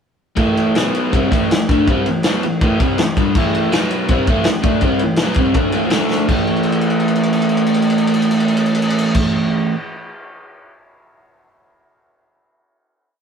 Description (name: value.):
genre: garage rock duo or trio.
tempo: 163 BPM.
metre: 4/4.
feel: straight.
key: A minor.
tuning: A4 = 442 Hz.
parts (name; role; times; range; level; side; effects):
crunchy overdriven guitar; riff; 0.4-9.7 s; G2 to D4; -16 LUFS; right 1 dB; none.
vintage drum kit; drums; 0.4-10.7 s; crash cymbal, kick drum, ride cymbal, snare drum; -18 LUFS; left 1 dB; none.
room: moderate stone room reverb, RT60 1.0 s.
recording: band playing live in one room.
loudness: -14 LUFS.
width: side -7 dB against mid.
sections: 0.4-6.3 riff; 6.3-9.2 final chord.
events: drum fill 6.1, 6.5-9.1.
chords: 0.4 A5; 0.8 B5; 1.1 Am; 3.7 B5; 4.1 Am; 5.9 D5; 6.3 A5.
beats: | 0.38 0.75 1.13 1.50 | 1.87 2.24 2.61 2.98 | 3.35 3.72 4.09 4.45 | 4.82 5.19 5.55 5.92 | 6.29 6.65 7.02 7.39 | 7.76 8.13 8.50 8.87.